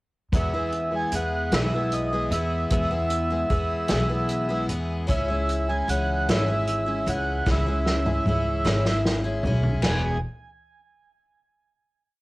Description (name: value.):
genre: folk rock and heartland rock.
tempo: 50 BPM (dotted quarters).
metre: 6/8.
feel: straight.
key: E major.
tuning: A4 = 438 Hz.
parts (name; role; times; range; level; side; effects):
picked twelve-string acoustic guitar; accompaniment; 0.3-10.2 s; E2 to E4; -28 LUFS; left 2 dB; none.
upright bass; bass; 0.3-10.2 s; E1 to E2; -27 LUFS; equal; none.
unplugged drum kit; drums; 0.3-10.0 s; crash cymbal, hi-hat, kick drum, snare drum, toms; -26 LUFS; equal; cassette tape.
mellow accordion; melody; 0.4-10.2 s; D#5 to G#5; -28 LUFS; right 2 dB; cassette tape, tape echo.
room: light reverb.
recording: home recording on cassette.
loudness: -22 LUFS.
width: side -21 dB against mid.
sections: 0.3-9.8 verse; 9.8-12.2 final chord.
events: drum fill 7.5-9.8.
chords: 0.3 E; 5.1 C#m; 9.8 E.